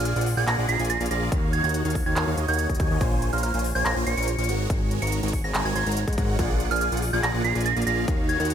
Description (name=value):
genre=future bass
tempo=142 BPM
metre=4/4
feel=half-time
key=Bb minor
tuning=A4 = 440 Hz
part: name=supersaw chords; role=riff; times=0.0-8.5 s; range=Eb3 to C6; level=-28 LUFS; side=right 1 dB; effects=phaser, sidechain pumping
part: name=fat analog bass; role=bass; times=0.0-8.5 s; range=Ab1 to Ab2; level=-26 LUFS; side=equal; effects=sidechain pumping
part: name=big-room dance drum kit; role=drums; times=0.0-8.5 s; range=handclaps, hi-hat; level=-32 LUFS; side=equal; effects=overdrive
part: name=soft synth bell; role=melody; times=0.1-8.5 s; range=F6 to Db7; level=-28 LUFS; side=right 3 dB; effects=chorus, phaser, sidechain pumping, dub echo
part: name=electronic kick drum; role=drums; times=1.3-8.2 s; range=none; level=-26 LUFS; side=equal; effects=overdrive
room=little or no reverb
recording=none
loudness=-22 LUFS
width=side -9 dB against mid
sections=0.0-8.5 A section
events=none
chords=0.0 Bb7b13; 1.3 Ebm9; 3.0 Bbm7; 4.5 Ab7sus4; 6.4 Bb7b13